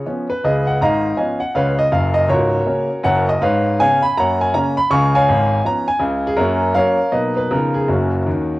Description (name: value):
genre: jazz, stride piano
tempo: 161 BPM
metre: 4/4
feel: swing 64% on 8ths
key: F# major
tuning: A4 = 439 Hz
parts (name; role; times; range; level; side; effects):
- warm concert grand piano; solo; 0.0-8.6 s; C#1 to C#6; -15 LUFS; equal; cassette tape
room: moderate spring reverb, RT60 1.4 s, small room ambience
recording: home recording on cassette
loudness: -14 LUFS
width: side -18 dB against mid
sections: 0.0-8.6 A section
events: grand piano fill 8.3-8.6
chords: 0.4 C#9; 1.9 F#; 3.4 C#7/G#; 4.2 F#; 4.9 C#7; 6.4 F#; 7.1 Bmaj7; 7.5 C#13; 7.9 F#